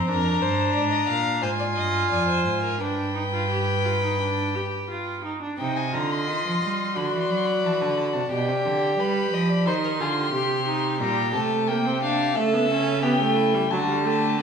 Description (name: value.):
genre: classical, baroque-style fugue for string quartet.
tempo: 88 BPM.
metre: 4/4.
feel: straight.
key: C minor.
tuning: A4 = 440 Hz.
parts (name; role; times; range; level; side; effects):
dark violin; melody; 0.0-14.4 s; E5 to C6; -27 LUFS; left 6 dB; none.
warm violin; second line; 0.0-14.4 s; E4 to F5; -29 LUFS; left 3 dB; none.
rich viola; accompaniment; 0.0-14.4 s; F#3 to G4; -26 LUFS; right 3 dB; none.
rich cello; bass; 0.0-14.4 s; F2 to G3; -27 LUFS; right 4 dB; none.
room: wet recital hall reverb, RT60 1.4 s.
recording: small room ambience.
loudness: -21 LUFS.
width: side -6 dB against mid.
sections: 0.0-5.6 A section; 5.6-14.4 B section.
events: none.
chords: 0.1 Ddim/F; 2.8 G; 5.6 Cm; 7.0 D7; 8.3 G/B; 9.7 Cm; 11.0 Gm/Bb; 12.4 A7/C#; 13.7 D.